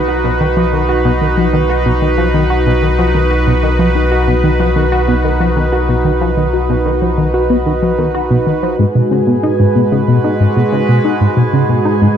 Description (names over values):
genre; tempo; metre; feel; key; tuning
ambient, sequencer-driven space music; 93 BPM; 4/4; straight; B lydian; A4 = 440 Hz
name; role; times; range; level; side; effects
sweeping resonant pad; sustained chords; 0.0-12.2 s; G#2 to B4; -15 LUFS; right 1 dB; chorus
warm sub bass; bass; 0.0-8.8 s; B1; -17 LUFS; equal; none
tight sequenced synth; riff; 0.1-12.1 s; G#2 to F#4; -14 LUFS; left 1 dB; chorus, ping-pong delay
bubbling stepped-filter texture; texture; 8.8-12.2 s; G#4 to G#5; -23 LUFS; equal; chorus, built-in reverb
room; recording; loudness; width
moderate plate reverb, RT60 2.6 s; echo-heavy mix; -11 LUFS; side -8 dB against mid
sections
0.0-8.8 A section; 8.8-12.2 B section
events
none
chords
0.0 B; 8.8 G#m7